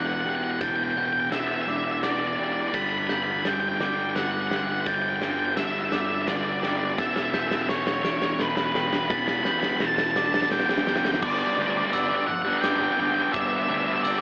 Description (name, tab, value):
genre	post-rock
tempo	85 BPM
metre	3/4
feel	straight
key	G major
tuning	A4 = 440 Hz
part	octave-fuzz lead guitar	melody	0.0-14.2 s	B4 to B5	-26 LUFS	equal	distortion, tape echo
part	electric guitar through a small old amp	arpeggios	0.0-11.2 s	E3 to G4	-35 LUFS	equal	none
part	glockenspiel with brass mallets	arpeggios	0.0-14.2 s	D6 to D7	-34 LUFS	equal	tape echo
part	thick fuzz guitar	riff	0.0-14.2 s	E2 to G4	-30 LUFS	equal	distortion
part	fuzz picked electric bass	bass	0.0-14.2 s	E1 to D2	-36 LUFS	equal	overdrive
part	huge arena drum kit	drums	0.6-14.2 s	crash cymbal, hi-hat, kick drum, snare drum	-29 LUFS	equal	none
part	sludgy distorted guitar	riff	11.2-14.2 s	G3 to G4	-32 LUFS	right 1 dB	overdrive
room	moderate large studio reverb, RT60 1.1 s, small room ambience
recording	AM radio sound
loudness	-22 LUFS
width	side -29 dB against mid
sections	0.0-11.2 A section; 11.2-14.2 B section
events	build-up 0.0-11.2; drum fill 0.0-11.2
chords	0.0 Em7; 2.7 G; 7.0 Em7; 11.2 G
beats	| 0.62 1.32 2.03 | 2.74 3.45 4.16 | 4.86 5.57 6.28 | 6.99 7.69 8.40 | 9.11 9.81 10.52 | 11.23 11.93 12.64 | 13.35 14.05